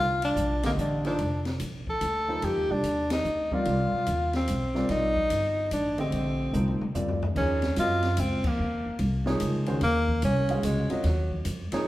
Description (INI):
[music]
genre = modal jazz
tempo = 146 BPM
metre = 3/4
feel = swing 65% on 8ths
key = Eb dorian from 7.4 s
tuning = A4 = 439 Hz
[part]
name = breathy tenor saxophone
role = melody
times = 0.0-11.4 s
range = Gb3 to A4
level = -27 LUFS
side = equal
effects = none
[part]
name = upright bass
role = bass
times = 0.0-11.8 s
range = F1 to Gb2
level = -29 LUFS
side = equal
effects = none
[part]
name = open jazz drum kit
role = drums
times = 0.2-11.8 s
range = crash cymbal, hi-hat, kick drum, ride cymbal, snare drum, toms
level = -35 LUFS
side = left 1 dB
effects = none
[part]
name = warm grand piano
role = accompaniment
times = 0.6-11.9 s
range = D3 to F5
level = -31 LUFS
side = right 1 dB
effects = none
[sound]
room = wet large studio reverb, RT60 1.4 s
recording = heard from further back in the room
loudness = -24 LUFS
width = side -16 dB against mid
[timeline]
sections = 0.0-7.4 A section; 7.4-11.9 B section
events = band accent 3.0, 8.4; drum fill 6.5-7.4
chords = 0.0 C13sus4; 2.4 F13sus4; 7.4 Ebm9